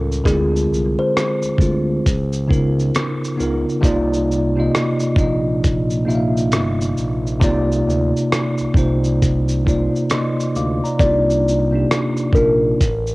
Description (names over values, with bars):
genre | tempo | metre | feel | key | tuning
lo-fi hip hop | 67 BPM | 4/4 | swing 63% on 16ths | C minor | A4 = 437 Hz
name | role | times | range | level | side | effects
bell-like tine electric piano | accompaniment | 0.0-12.8 s | A2 to D6 | -18 LUFS | equal | medium stereo tremolo, cassette tape, low-pass filter
smooth gliding synth bass | bass | 0.0-13.1 s | G1 to D2 | -22 LUFS | equal | none
dusty soul sampler-style drum kit | drums | 0.1-13.1 s | hi-hat, kick drum, rim click, shaker | -20 LUFS | equal | none
kalimba | melody | 0.3-2.3, 11.0-12.6 s | Ab4 to D5 | -21 LUFS | left 1 dB | low-pass filter, cassette tape
room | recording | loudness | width
light reverb | home recording on cassette | -15 LUFS | side -22 dB against mid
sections
0.0-11.0 A section; 11.0-13.1 A section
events
none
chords
0.2 Dm7b5; 2.0 Db13; 3.8 Cm11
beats
| 0.25 1.15 2.04 2.94 | 3.83 4.73 5.62 6.52 | 7.41 8.31 9.21 10.10 | 11.00 11.89 12.79